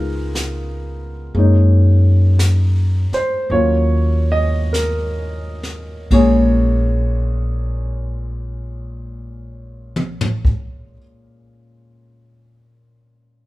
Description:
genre	jazz ballad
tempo	41-62 BPM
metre	4/4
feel	swing 66% on 8ths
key	Bb minor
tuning	A4 = 439 Hz
part	warm baby grand piano	accompaniment	0.0-13.5 s	Bb2 to Eb5	-19 LUFS	left 1 dB	none
part	upright bass	bass	0.0-10.9 s	Bb1 to Gb2	-17 LUFS	equal	none
part	jazz brush drum kit	drums	0.4-10.9 s	brushed snare drum, hi-hat, kick drum, ride cymbal, snare drum, toms	-19 LUFS	equal	none
room	light reverb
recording	band playing live in one room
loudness	-14 LUFS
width	side -18 dB against mid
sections	0.0-1.3 A section; 1.3-6.1 B section; 6.1-11.9 C section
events	slowing down 0.0-6.1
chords	0.0 Db7; 1.3 Gb6; 3.5 Ebm9; 6.1 Bbm7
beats	0.35 | 1.35 2.39 3.51 4.73 | 6.11 7.56 9.01 10.45

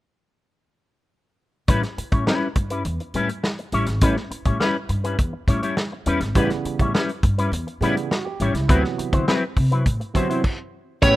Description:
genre	funk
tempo	103 BPM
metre	4/4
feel	straight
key	A mixolydian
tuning	A4 = 441 Hz
part	electric guitar with an envelope filter	accompaniment	1.7-11.2 s	F#3 to C#5	-24 LUFS	left 2 dB	analog chorus
part	upright bass	bass	1.7-11.2 s	G#1 to D3	-24 LUFS	equal	none
part	warm soul drum kit	drums	1.7-11.2 s	crash cymbal, hi-hat, kick drum, snare drum	-22 LUFS	equal	none
part	barky tine electric piano	stabs	6.3-11.2 s	C3 to G4	-27 LUFS	right 7 dB	slapback echo
part	high-gain lead guitar	melody	11.0-11.2 s	C#5	-15 LUFS	right 2 dB	distortion
room	small room ambience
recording	rough home demo mix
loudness	-20 LUFS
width	side -16 dB against mid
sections	1.7-11.0 A section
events	stop 10.4-11.0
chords	1.7 A9; 8.7 D13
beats	| 1.68 2.27 2.85 3.44 | 4.02 4.60 5.19 5.77 | 6.36 6.94 7.52 8.11 | 8.69 9.28 9.86 10.44 | 11.03

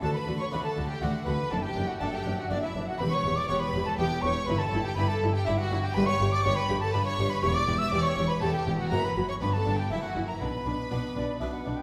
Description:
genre	classical, baroque-style concerto movement with solo episodes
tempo	121 BPM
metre	3/4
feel	straight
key	D major, B minor from 6.0 s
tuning	A4 = 440 Hz
part	concert flute	melody	0.0-11.8 s	D5 to E6	-35 LUFS	equal	none
part	rich chamber violin section	melody	0.0-11.7 s	D5 to E6	-40 LUFS	equal	none
part	rich studio violin section	second line	0.0-11.6 s	D4 to E5	-36 LUFS	equal	none
part	harpsichord	accompaniment	0.0-11.8 s	E2 to G4	-38 LUFS	equal	none
part	warm symphonic viola section	accompaniment	0.0-11.7 s	D4 to G4	-38 LUFS	equal	none
part	rich studio double bass section	bass	0.0-11.7 s	E1 to D2	-36 LUFS	equal	none
part	rich symphonic cello section	bass	0.0-11.7 s	E2 to D3	-35 LUFS	equal	none
room	wet recital hall reverb, RT60 1.3 s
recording	heard from further back in the room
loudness	-28 LUFS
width	mono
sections	0.0-11.8 A section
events	none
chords	0.0 D; 1.5 D/F#; 3.0 Em; 4.5 Em/G; 6.0 G5; 7.4 C#dim/E; 8.9 F#5; 9.4 G; 9.9 F#7; 10.4 Bm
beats	| 0.03 0.52 1.02 | 1.51 2.01 2.50 | 3.00 3.49 3.98 | 4.48 4.97 5.46 | 5.96 6.45 6.94 | 7.44 7.93 8.43 | 8.92 9.42 9.91 | 10.41 10.91 11.41

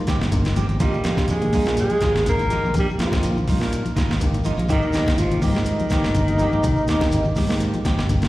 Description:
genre	afrobeat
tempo	124 BPM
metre	4/4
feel	swing 53% on 16ths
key	unclear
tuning	A4 = 440 Hz
part	barky tine electric piano	accompaniment	0.0-8.3 s	Bb3 to Bb5	-34 LUFS	left 1 dB	overdrive, slapback echo
part	mellow electric guitar	arpeggios	0.0-8.3 s	C3 to G3	-29 LUFS	left 3 dB	slapback echo
part	semi-hollow electric guitar	stabs	0.1-8.0 s	Eb3 to G4	-31 LUFS	right 5 dB	wide subtle chorus, slapback echo
part	boom bap sampler-style drum kit	drums	0.1-8.3 s	hi-hat, kick drum, snare drum	-24 LUFS	equal	overdrive
part	congas	percussion	0.1-8.2 s	none	-33 LUFS	left 1 dB	none
part	shekere	percussion	0.1-8.3 s	none	-35 LUFS	right 1 dB	none
part	fingered electric bass	bass	0.2-8.3 s	G1 to Bb2	-23 LUFS	equal	none
part	breathy trombone	melody	0.8-8.1 s	Eb4 to Bb4	-24 LUFS	equal	slapback echo
part	raspy tenor saxophone	second line	0.8-8.1 s	Eb3 to Bb3	-30 LUFS	right 3 dB	slapback echo
room	light reverb, small room ambience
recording	live gig heard through the venue's PA, recital hall reverb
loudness	-18 LUFS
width	side -17 dB against mid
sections	0.0-8.3 A section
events	tine electric piano fill 0.1-0.8; drum fill 8.1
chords	0.0 Abmaj7; 0.8 Bb7sus4; 4.7 Abmaj7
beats	0.33 | 0.81 1.30 1.78 2.27 | 2.75 3.24 3.73 4.21 | 4.70 5.18 5.67 6.15 | 6.64 7.12 7.61 8.09

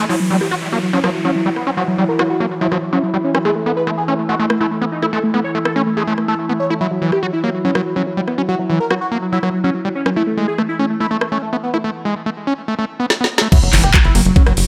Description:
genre	psychedelic trance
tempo	143 BPM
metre	4/4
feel	straight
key	unclear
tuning	A4 = 439 Hz
part	unison lead	melody	0.0-14.6 s	F#3 to C#5	-22 LUFS	equal	phaser, sidechain pumping, delay
part	overtone-sweeping drone	sustained chords	0.0-14.7 s	E3 to E4	-27 LUFS	equal	chorus, built-in reverb, sidechain pumping
part	screaming distorted acid line	riff	0.0-14.5 s	E3 to F#4	-23 LUFS	equal	distortion, chorus, sidechain pumping, delay
part	downlifter and impact	sound effects	0.1-3.5, 13.5-14.7 s	none	-27 LUFS	equal	none
part	garage drum kit	drums	0.4-14.7 s	crash cymbal, handclaps, hi-hat, ride cymbal, rim click, snare drum	-20 LUFS	equal	overdrive, small room ambience
part	electronic kick drum	drums	13.5-14.4 s	none	-13 LUFS	equal	overdrive, small room ambience
part	tight sequencer bass	bass	13.6-14.6 s	F#1	-19 LUFS	equal	none
room	light reverb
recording	none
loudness	-17 LUFS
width	mono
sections	0.1-13.5 A section; 13.5-14.7 B section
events	drum fill 13.1-13.5; drop 13.5-14.7; impact 13.5-14.7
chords	0.1 F#5; 3.5 A5; 6.8 F#5; 10.2 A5; 13.5 F#5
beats	| 0.09 0.51 0.93 1.35 | 1.77 2.19 2.61 3.03 | 3.45 3.87 4.29 4.71 | 5.13 5.55 5.97 6.39 | 6.81 7.23 7.65 8.07 | 8.49 8.90 9.32 9.74 | 10.16 10.58 11.00 11.42 | 11.84 12.26 12.68 13.10 | 13.52 13.94 14.36

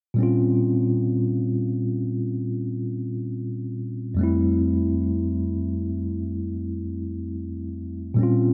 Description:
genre	R&B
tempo	free time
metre	none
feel	none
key	F major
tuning	A4 = 440 Hz
part	tine electric piano	accompaniment	0.1-8.5 s	F2 to F4	-25 LUFS	equal	none
room	light reverb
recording	dark, warm production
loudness	-25 LUFS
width	mono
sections	0.2-8.5 A section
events	none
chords	0.2 Bbm6; 4.2 Fmaj7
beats	free time

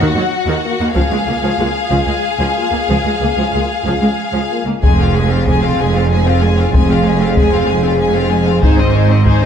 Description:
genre	cinematic, epic orchestral film score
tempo	63 BPM (dotted quarters)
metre	6/8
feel	straight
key	unclear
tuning	A4 = 440 Hz
part	rich symphonic violin section	melody	0.0-9.5 s	C5 to Ab5	-20 LUFS	left 6 dB	none
part	rich studio violin section	second line	0.0-9.5 s	F4 to C5	-22 LUFS	left 5 dB	none
part	rich chamber viola section	accompaniment	0.0-9.5 s	Eb3 to Eb4	-21 LUFS	right 1 dB	none
part	clear symphonic cello section	bass	0.0-9.5 s	Db2 to Ab2	-18 LUFS	right 2 dB	none
part	rich symphonic double bass section	bass	0.0-9.5 s	F1 to Db2	-18 LUFS	right 3 dB	none
part	mellow French horn section	sustained chords	0.6-9.5 s	Bb3 to Ab4	-21 LUFS	left 1 dB	none
part	taiko ensemble	drums	0.9-9.5 s	none	-15 LUFS	left 1 dB	none
room	moderate scoring stage reverb, RT60 1.8 s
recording	none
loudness	-12 LUFS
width	side -8 dB against mid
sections	0.0-4.8 A section; 4.8-9.5 B section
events	build-up 0.0-4.8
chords	0.0 Ebm; 1.0 Db6; 4.8 Fm; 8.6 Ab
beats	0.01 | 0.96 1.92 | 2.89 3.86 | 4.83 5.79 | 6.74 7.68 | 8.63

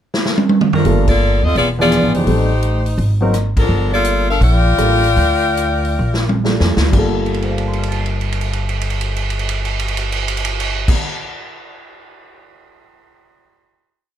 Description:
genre	jazz, big band swing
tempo	119-169 BPM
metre	4/4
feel	swing 65% on 8ths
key	G minor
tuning	A4 = 435 Hz
part	swinging big-band drum kit	drums	0.1-12.4 s	crash cymbal, hi-hat, kick drum, ride cymbal, rim click, snare drum, toms	-19 LUFS	right 1 dB	none
part	bright saxophone section	melody	0.7-6.4 s	F3 to G5	-17 LUFS	left 2 dB	none
part	warm concert grand piano	accompaniment	0.8-11.2 s	G2 to C7	-20 LUFS	equal	none
part	upright bass	bass	0.8-10.9 s	E1 to F2	-17 LUFS	equal	none
room	light reverb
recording	none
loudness	-14 LUFS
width	side -10 dB against mid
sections	0.0-0.8 pickup bar; 0.8-6.9 A section; 6.9-11.0 final chord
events	drum fill 0.1-0.8, 6.0-6.9, 7.2-10.8; band accent 1.0, 3.5; slowing down 3.7-6.9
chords	0.0 N.C.; 0.8 Gm9; 1.6 E7b9; 2.3 Am7b5; 3.0 Ab9; 3.7 Gm9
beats	0.13 0.49 | 0.85 1.20 1.56 1.91 | 2.27 2.63 2.98 3.34 | 3.69 4.05 4.41 4.78 | 5.17 5.57 6.00 6.45 | 6.93 7.44 7.94 8.45 | 8.95 9.46 9.96 10.47

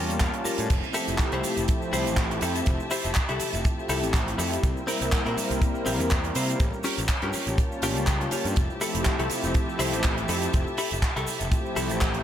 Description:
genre	nu-disco, nu disco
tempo	122 BPM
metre	4/4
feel	swing 55% on 16ths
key	F major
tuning	A4 = 439 Hz
part	warm analog pad	accompaniment	0.0-12.2 s	F3 to A5	-30 LUFS	equal	chorus, sidechain pumping, digital delay
part	direct-recorded clean electric guitar	riff	0.0-12.0 s	C4 to A5	-31 LUFS	left 3 dB	lush chorus, digital delay
part	fuzz picked electric bass	bass	0.0-12.2 s	F1 to C3	-32 LUFS	equal	overdrive
part	tight funk drum kit	drums	0.1-12.2 s	crash cymbal, handclaps, hi-hat, shaker	-31 LUFS	right 2 dB	studio reverb
part	kick drum	drums	0.2-12.1 s	none	-25 LUFS	equal	studio reverb
part	rich chamber string section	sustained chords	0.7-12.2 s	G4 to A5	-36 LUFS	left 2 dB	sidechain pumping
part	cabasa	percussion	0.7-12.2 s	none	-43 LUFS	right 2 dB	none
room	light reverb, small room ambience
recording	none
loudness	-23 LUFS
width	side -10 dB against mid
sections	0.0-12.2 A section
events	clean electric guitar fill 0.0-0.7, 7.6-8.6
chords	0.0 A7b9b13; 0.7 Fmaj9; 4.6 C7; 6.6 A7b9b13; 8.6 Fmaj9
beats	0.21 | 0.70 1.19 1.68 2.17 | 2.67 3.16 3.65 4.14 | 4.63 5.13 5.62 6.11 | 6.60 7.09 7.58 8.08 | 8.57 9.06 9.55 10.04 | 10.54 11.03 11.52 12.01

